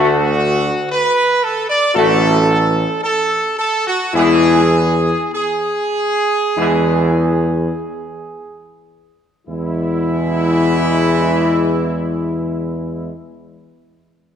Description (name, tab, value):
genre	classical, ceremonial fanfare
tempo	38-62 BPM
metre	4/4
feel	straight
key	E mixolydian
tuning	A4 = 440 Hz
part	dark trumpet section	melody	0.0-13.1 s	E4 to D5	-17 LUFS	right 2 dB	none
part	mellow French horn section	sustained chords	0.0-13.1 s	G#3 to F#4	-20 LUFS	left 6 dB	none
part	warm trombone section	sustained chords	0.0-13.1 s	B2 to A3	-23 LUFS	right 2 dB	none
part	warm tuba	bass	0.0-13.1 s	A1 to E2	-18 LUFS	right 1 dB	none
room	wet scoring stage reverb, RT60 2.0 s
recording	none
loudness	-14 LUFS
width	side -8 dB against mid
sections	0.0-9.5 A section; 9.5-14.4 B section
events	slowing down 0.0-9.5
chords	0.0 D; 4.1 E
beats	0.92 1.95 3.03 | 4.15 5.32 6.57 7.94 | 9.48 11.03 12.58